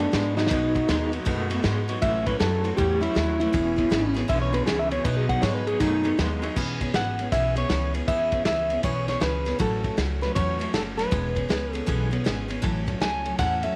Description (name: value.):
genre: rockabilly.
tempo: 158 BPM.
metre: 4/4.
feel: swing 64% on 8ths.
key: E major.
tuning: A4 = 440 Hz.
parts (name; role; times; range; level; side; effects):
electric guitar at the edge of break-up; melody; 0.0-13.8 s; D4 to G#5; -28 LUFS; equal; tape echo.
picked steel-string acoustic guitar; accompaniment; 0.0-13.8 s; A2 to A4; -33 LUFS; equal; none.
electric guitar through a small old amp; riff; 0.0-6.5 s; E2 to A3; -33 LUFS; equal; tremolo.
upright bass; bass; 0.0-13.7 s; E1 to G#2; -31 LUFS; equal; none.
vintage drum kit; drums; 0.0-13.7 s; crash cymbal, kick drum, ride cymbal, snare drum; -31 LUFS; equal; none.
room: light reverb, small room ambience.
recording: none.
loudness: -25 LUFS.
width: mono.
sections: 0.0-6.6 A section; 6.6-13.8 B section.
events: clean electric guitar solo 0.0-6.6; drum fill 0.3.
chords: 0.0 B6; 2.0 A6; 3.5 E6; 5.0 B6; 6.6 E6; 9.6 A6; 11.1 E6; 12.6 A6.